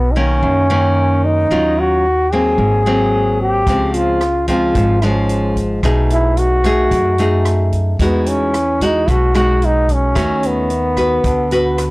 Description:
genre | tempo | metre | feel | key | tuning
bossa nova | 111 BPM | 4/4 | straight | unclear | A4 = 440 Hz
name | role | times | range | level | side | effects
warm trombone | melody | 0.0-11.9 s | B3 to G#4 | -16 LUFS | equal | none
nylon-string guitar | accompaniment | 0.0-11.9 s | F#2 to B4 | -18 LUFS | left 1 dB | none
upright bass | bass | 0.0-11.9 s | G#1 to F#2 | -18 LUFS | equal | none
swinging big-band drum kit | drums | 3.7-11.9 s | hi-hat, kick drum, rim click | -24 LUFS | equal | none
room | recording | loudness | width
little or no reverb | dry, gritty hardware recording, cassette tape | -12 LUFS | side -22 dB against mid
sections
0.0-11.9 A section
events
none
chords
0.0 Bmaj9; 1.5 D#m9; 2.6 G#9; 3.7 C#maj7; 5.8 B6; 8.0 Emaj9; 10.2 D#m7b5; 11.2 D6

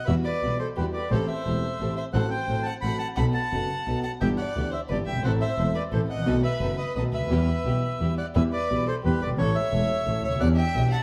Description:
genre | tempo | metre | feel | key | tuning
tango | 174 BPM | 3/4 | rubato | E minor | A4 = 440 Hz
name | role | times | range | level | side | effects
bandoneon | melody | 0.0-11.0 s | B4 to B5 | -33 LUFS | equal | none
warm violin | second line | 0.0-11.0 s | G4 to F#5 | -35 LUFS | equal | none
dark concert grand piano | accompaniment | 0.1-10.9 s | E1 to A4 | -31 LUFS | equal | none
clear studio string section | stabs | 0.1-8.2 s | G3 to A4 | -43 LUFS | equal | none
rich double bass | bass | 0.1-10.9 s | E1 to E2 | -29 LUFS | equal | none
room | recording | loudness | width
moderate plate reverb, RT60 2.5 s | heard from further back in the room | -26 LUFS | mono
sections
0.0-8.4 A section; 8.4-11.0 B section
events
none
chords
0.1 Emadd9; 1.1 Am7; 2.1 F#dim/A; 3.2 B7; 4.2 G6; 5.3 Am; 6.3 B7; 7.3 Em; 9.4 A; 10.4 Em7

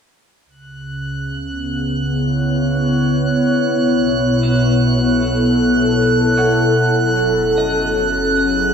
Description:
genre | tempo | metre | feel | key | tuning
ambient | 76 BPM | 4/4 | straight | C# minor | A4 = 440 Hz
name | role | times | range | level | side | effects
warbly tape-like pad | sustained chords | 0.8-8.7 s | B2 to C#5 | -15 LUFS | equal | chorus, built-in reverb, shimmer reverb
warm sub bass | bass | 0.5-8.7 s | F#1 to C#2 | -32 LUFS | right 1 dB | none
drifting glass-harmonics texture | texture | 0.5-8.7 s | F#6 | -22 LUFS | right 3 dB | chorus, built-in reverb, shimmer reverb
clean electric guitar | arpeggios | 4.4-8.7 s | F#3 to F#5 | -30 LUFS | right 2 dB | lush chorus, ping-pong delay, shimmer reverb
room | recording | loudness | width
wet concert hall reverb, RT60 2.2 s | cassette tape | -14 LUFS | side -7 dB against mid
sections
0.5-8.7 A section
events
fade-in on clean electric guitar 0.5-8.7; fade-in on sub bass 0.5-8.7; filter sweep on ambient pad 0.5-8.7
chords
0.5 C#m7; 3.6 B7sus4; 6.8 F#m9

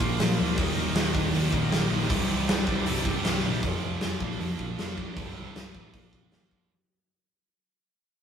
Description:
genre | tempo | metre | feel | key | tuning
hard rock | 157 BPM | 4/4 | straight | unclear | A4 = 440 Hz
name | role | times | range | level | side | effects
overdriven tonewheel organ | sustained chords | 0.0-3.6 s | Bb3 to D5 | -38 LUFS | equal | slow rotary speaker, chorus vibrato
scooped high-gain guitar | riff | 0.0-6.7 s | C2 to Bb3 | -32 LUFS | right 4 dB | distortion
sludgy distorted guitar | riff | 0.0-6.7 s | C2 to Bb3 | -34 LUFS | left 3 dB | none
sludgy distorted guitar | riff | 0.0-3.6 s | C2 to Bb3 | -31 LUFS | equal | overdrive
hollow-body short-scale picked electric bass | bass | 0.0-6.7 s | C1 to F2 | -34 LUFS | equal | none
big rock drum kit | drums | 0.0-6.6 s | hi-hat, kick drum, snare drum | -28 LUFS | left 1 dB | none
room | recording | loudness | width
moderate studio reverb, RT60 0.6 s | rough rehearsal-room recording | -24 LUFS | side -8 dB against mid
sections
0.0-3.6 A section; 3.6-6.7 B section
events
fade-out 3.6-6.7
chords
0.0 Bb; 0.6 Eb; 2.1 C5; 3.6 F5; 4.2 Bb5; 5.2 C5; 5.9 Bb5

